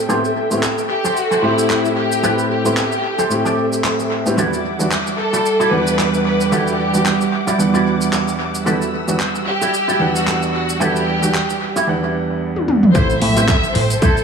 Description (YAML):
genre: nu-disco, nu disco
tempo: 112 BPM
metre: 4/4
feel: swing 56% on 16ths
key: A dorian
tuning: A4 = 441 Hz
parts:
  - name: clear grand piano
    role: accompaniment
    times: 0.0-13.5 s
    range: E2 to F#5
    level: -20 LUFS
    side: right 1 dB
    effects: sidechain pumping, analog delay
  - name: muted studio string section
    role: sustained chords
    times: 0.0-14.2 s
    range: G3 to E6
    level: -23 LUFS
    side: right 2 dB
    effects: sidechain pumping, low-pass filter
  - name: electric guitar with an envelope filter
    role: riff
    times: 0.1-14.2 s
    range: E4 to E5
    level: -23 LUFS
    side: right 2 dB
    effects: analog chorus, low-pass filter, analog delay
  - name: pop drum kit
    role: drums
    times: 0.1-14.2 s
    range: handclaps, hi-hat, shaker, toms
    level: -21 LUFS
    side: equal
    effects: small room ambience, analog delay
  - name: rich studio violin section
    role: melody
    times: 0.9-14.2 s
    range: E4 to E5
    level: -21 LUFS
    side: left 2 dB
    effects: vintage 12-bit sampler grit, analog delay
  - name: picked electric bass with an envelope filter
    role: bass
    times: 12.9-14.2 s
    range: A1 to A2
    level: -18 LUFS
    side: right 1 dB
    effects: none
  - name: electronic kick drum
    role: drums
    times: 12.9-14.1 s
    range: none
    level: -16 LUFS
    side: equal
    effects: small room ambience
  - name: impact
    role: sound effects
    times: 13.0-14.2 s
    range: none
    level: -25 LUFS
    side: equal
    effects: none
room: moderate plate reverb, RT60 2.0 s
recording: echo-heavy mix, small room ambience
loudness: -15 LUFS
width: side -6 dB against mid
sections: 0.0-12.9 A section; 12.9-14.2 B section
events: filter sweep on string section 0.0-12.9; drum fill 12.5-12.9; drop 12.9-14.2; impact 12.9-14.2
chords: 0.0 Am7; 4.4 Em9; 12.9 Am7